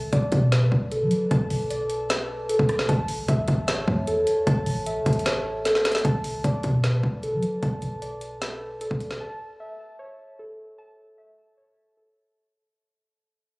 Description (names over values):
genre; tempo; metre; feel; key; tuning
hip hop, trap; 152 BPM; 4/4; half-time; B minor; A4 = 435 Hz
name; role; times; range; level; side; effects
muted felt-like synth keys; arpeggios; 0.0-12.4 s; A4 to A5; -27 LUFS; equal; chorus, ping-pong delay
clean 808-style bass; bass; 0.0-9.2 s; A1 to F#3; -27 LUFS; equal; none
trap drum kit; drums; 0.1-9.2 s; hi-hat, kick drum, rim click, snare drum; -26 LUFS; equal; none
room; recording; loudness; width
digital ambience; recorded on a phone in the room, club reverb; -22 LUFS; side -26 dB against mid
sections
0.0-6.0 A section; 6.0-12.4 B section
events
drum fill 5.7-6.0; fade-out 6.0-12.4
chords
0.0 Bm7; 2.9 A; 6.0 Bm7; 9.2 A